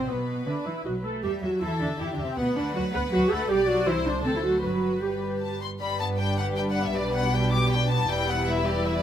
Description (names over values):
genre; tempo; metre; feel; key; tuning
quick classical-period movement for string orchestra; 157 BPM; 3/4; straight; E minor, G major from 3.5 s; A4 = 440 Hz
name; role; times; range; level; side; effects
warm symphonic violin section; second line; 0.0-9.0 s; G3 to D5; -31 LUFS; left 3 dB; none
dark symphonic viola section; accompaniment; 0.0-9.0 s; G3 to B4; -28 LUFS; right 1 dB; none
warm symphonic cello section; bass; 0.0-9.0 s; E2 to B3; -30 LUFS; right 2 dB; none
warm symphonic double bass section; bass; 0.1-9.0 s; E1 to E2; -32 LUFS; right 2 dB; none
warm symphonic violin section; melody; 0.5-9.0 s; B4 to D6; -31 LUFS; left 6 dB; none
room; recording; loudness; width
light reverb; close, detailed microphones; -23 LUFS; side -10 dB against mid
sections
0.0-5.8 A section; 5.8-9.0 B section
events
none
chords
0.1 E5/B; 0.9 B; 1.2 Em; 2.4 Bm/D; 3.5 G/B; 3.9 Cadd9; 4.2 D9; 4.6 G; 7.0 G/B; 8.1 Em